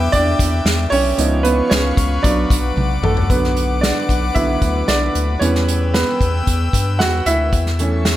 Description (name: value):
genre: piano-driven pop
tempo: 114 BPM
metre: 4/4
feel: straight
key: B minor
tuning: A4 = 442 Hz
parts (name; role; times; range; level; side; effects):
- bright upright piano; accompaniment; 0.0-8.2 s; D3 to F#5; -19 LUFS; right 2 dB; none
- airy breathy pad; sustained chords; 0.0-8.2 s; A4 to E6; -24 LUFS; left 4 dB; chorus
- round analog bass; bass; 0.0-8.2 s; A1 to G2; -19 LUFS; left 1 dB; none
- unplugged drum kit; drums; 0.1-8.2 s; hi-hat, kick drum, snare drum, toms; -20 LUFS; equal; none
room: studio ambience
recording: none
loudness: -14 LUFS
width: side -14 dB against mid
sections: 0.0-3.3 A section; 3.3-8.2 B section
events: upright piano solo 0.0-3.3, 3.3-8.2; drum fill 2.8-3.3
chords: 0.0 Em7; 1.2 C#7; 2.2 Bm; 5.4 Em; 7.5 A/E